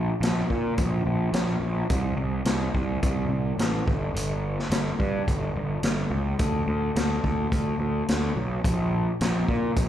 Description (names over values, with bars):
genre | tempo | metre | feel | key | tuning
classic rock | 107 BPM | 4/4 | straight | unclear | A4 = 440 Hz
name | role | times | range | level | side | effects
fuzz picked electric bass | bass | 0.0-9.9 s | G1 to Bb2 | -25 LUFS | equal | overdrive
vintage drum kit | drums | 0.2-9.9 s | hi-hat, kick drum, snare drum | -28 LUFS | equal | none
room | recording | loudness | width
little or no reverb | live gig heard through the venue's PA, club reverb | -23 LUFS | side -11 dB against mid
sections
0.0-9.9 A section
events
none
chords
none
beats
0.22 0.79 1.35 | 1.91 2.47 3.03 3.59 | 4.15 4.72 5.28 5.84 | 6.40 6.96 7.53 8.09 | 8.65 9.21 9.77